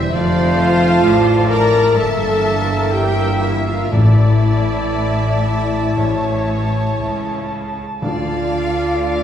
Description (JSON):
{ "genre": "classical", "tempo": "57-66 BPM", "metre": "4/4", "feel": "rubato", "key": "unclear", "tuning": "A4 = 438 Hz", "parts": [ { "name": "clear symphonic violin section", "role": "melody", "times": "0.0-9.2 s", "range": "C5 to F5", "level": "-29 LUFS", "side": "left 4 dB", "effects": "none" }, { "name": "clear clarinet", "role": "second line", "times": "0.0-9.2 s", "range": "C5 to E5", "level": "-29 LUFS", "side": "left 1 dB", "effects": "none" }, { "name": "dark trombone section", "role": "sustained chords", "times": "0.0-9.2 s", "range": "D3 to Bb3", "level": "-30 LUFS", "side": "right 2 dB", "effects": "none" }, { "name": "concert harp", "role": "arpeggios", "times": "0.0-9.2 s", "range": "F2 to E5", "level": "-31 LUFS", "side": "left 4 dB", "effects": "none" }, { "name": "rich studio cello section", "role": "bass", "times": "0.0-9.2 s", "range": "E2 to D3", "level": "-21 LUFS", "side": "equal", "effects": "none" }, { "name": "rich symphonic double bass section", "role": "bass", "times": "0.0-9.2 s", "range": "E1 to D2", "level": "-24 LUFS", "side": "equal", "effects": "none" }, { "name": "rich studio violin section", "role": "second line", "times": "0.1-9.2 s", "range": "E5 to Bb5", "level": "-29 LUFS", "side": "left 3 dB", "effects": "none" }, { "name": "silver concert flute", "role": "second line", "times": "0.1-9.2 s", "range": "E5 to Bb5", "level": "-27 LUFS", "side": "equal", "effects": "none" }, { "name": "rich studio viola section", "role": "accompaniment", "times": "0.1-9.2 s", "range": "E4 to Bb4", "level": "-26 LUFS", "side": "right 1 dB", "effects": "none" }, { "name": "mellow French horn section", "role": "sustained chords", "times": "0.1-9.2 s", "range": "E4 to Bb4", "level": "-20 LUFS", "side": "left 1 dB", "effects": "none" }, { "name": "warm trumpet", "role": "stabs", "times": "0.1-9.2 s", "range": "C5 to E5", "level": "-28 LUFS", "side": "equal", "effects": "none" }, { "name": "mellow cor anglais", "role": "second line", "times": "0.2-9.2 s", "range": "Bb4 to A5", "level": "-26 LUFS", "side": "right 3 dB", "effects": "none" }, { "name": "timpani", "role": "percussion", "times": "3.9-9.2 s", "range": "A2 to D3", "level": "-18 LUFS", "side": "left 2 dB", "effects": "none" } ], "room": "wet recital hall reverb, RT60 1.5 s", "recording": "recorded in a church or concert hall", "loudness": "-14 LUFS", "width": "side -9 dB against mid", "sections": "0.0-9.2 A section", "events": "none", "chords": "0.1 F; 2.0 Edim/G; 3.9 Asus4; 6.0 A; 8.0 Dm" }